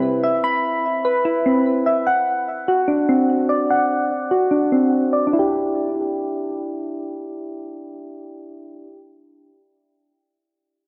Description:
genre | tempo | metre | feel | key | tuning
hip hop | 147 BPM | 4/4 | half-time | E minor | A4 = 440 Hz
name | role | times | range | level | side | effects
soft electric-piano-like synth keys | arpeggios | 0.0-9.0 s | C4 to B5 | -21 LUFS | equal | chorus, digital delay
room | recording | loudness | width
moderate lush hall reverb, RT60 2.0 s | dark, warm production, low-pass filter | -20 LUFS | mono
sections
0.0-5.3 A section; 5.3-8.6 B section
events
filter sweep 0.0-5.3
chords
0.0 Cmaj7; 2.1 D7; 5.3 Em7

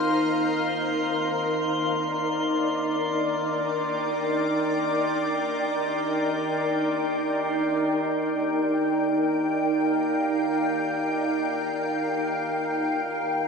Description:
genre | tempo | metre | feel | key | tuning
ambient | free time | none | none | Eb major | A4 = 440 Hz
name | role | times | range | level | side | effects
soft additive organ-like pad | sustained chords | 0.0-13.5 s | Eb4 to G5 | -23 LUFS | equal | ensemble chorus, built-in reverb, shimmer reverb
overtone-sweeping drone | drone | 0.5-7.9 s | Eb3 | -47 LUFS | equal | none
drifting glass-harmonics texture | texture | 0.0-7.9 s | C6 | -33 LUFS | equal | chorus, built-in reverb, shimmer reverb
room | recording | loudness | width
wet cathedral reverb, RT60 5.8 s | in a vast, echoing space | -23 LUFS | side -5 dB against mid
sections
0.0-7.8 A section; 7.8-13.5 B section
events
none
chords
0.0 Bbsus2/Eb; 7.8 Ebmaj7

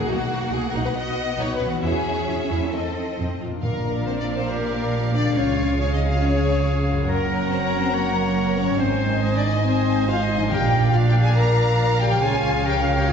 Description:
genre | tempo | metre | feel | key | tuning
cinematic | 139 BPM | 4/4 | straight | unclear | A4 = 443 Hz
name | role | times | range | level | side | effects
rich symphonic violin section | melody | 0.0-13.1 s | Bb4 to Bb5 | -30 LUFS | left 3 dB | none
warm symphonic violin section | second line | 0.0-13.1 s | F#4 to Bb5 | -29 LUFS | left 2 dB | none
rich symphonic viola section | accompaniment | 0.0-13.1 s | C4 to F5 | -31 LUFS | right 1 dB | none
concert harp | arpeggios | 0.0-13.1 s | Gb2 to F#4 | -31 LUFS | left 4 dB | none
rich symphonic cello section | bass | 0.0-13.1 s | Gb2 to C#4 | -27 LUFS | right 3 dB | none
rich symphonic double bass section | bass | 0.1-13.1 s | Gb1 to F2 | -25 LUFS | right 1 dB | none
silver concert flute | second line | 3.6-13.1 s | Bb4 to Bb5 | -31 LUFS | left 2 dB | none
bright trombone section | sustained chords | 3.6-13.1 s | Eb3 to Eb4 | -31 LUFS | right 4 dB | none
warm French horn section | sustained chords | 3.6-13.1 s | Bb3 to Bb4 | -26 LUFS | left 4 dB | none
timpani | percussion | 3.6-4.2, 10.5-11.1 s | Bb2 | -29 LUFS | equal | none
clear oboe | second line | 4.5-13.1 s | D4 to Eb5 | -30 LUFS | equal | none
room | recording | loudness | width
wet scoring stage reverb, RT60 1.5 s | heard from further back in the room, nothing above 7.9 kHz | -19 LUFS | side -7 dB against mid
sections
0.0-3.6 A section; 3.6-13.1 B section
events
none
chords
0.1 B; 1.8 E; 2.7 F7; 3.6 Bb; 5.4 Db; 7.1 Gb; 8.8 Ab; 10.5 Bb; 12.2 Db

